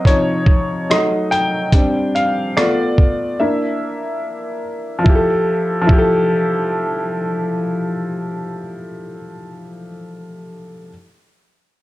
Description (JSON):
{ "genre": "lo-fi hip hop", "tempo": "72 BPM", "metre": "4/4", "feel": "swing 58% on 16ths", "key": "F major", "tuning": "A4 = 441 Hz", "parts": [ { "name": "warm upright piano", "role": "accompaniment", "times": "0.0-10.9 s", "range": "C3 to G5", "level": "-18 LUFS", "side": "left 1 dB", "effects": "cassette tape, low-pass filter" }, { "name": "lo-fi sampler-style drum kit", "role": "drums", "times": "0.1-6.1 s", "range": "hi-hat, kick drum, rim click", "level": "-14 LUFS", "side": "equal", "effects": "none" } ], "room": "moderate small room reverb, RT60 0.5 s", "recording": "cassette tape", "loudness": "-15 LUFS", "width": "side -16 dB against mid", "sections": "0.0-5.1 A section; 5.1-8.4 B section", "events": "upright piano solo 0.0-5.1; break 3.4-5.1", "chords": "0.1 Dbmaj7; 0.9 Gbm6; 1.7 G7sus4; 2.6 Bm7b5/A; 3.4 Bb; 5.1 Fmaj9", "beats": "0.05 0.89 | 1.72 2.55 3.38 4.22 | 5.05 5.88 6.72 7.55" }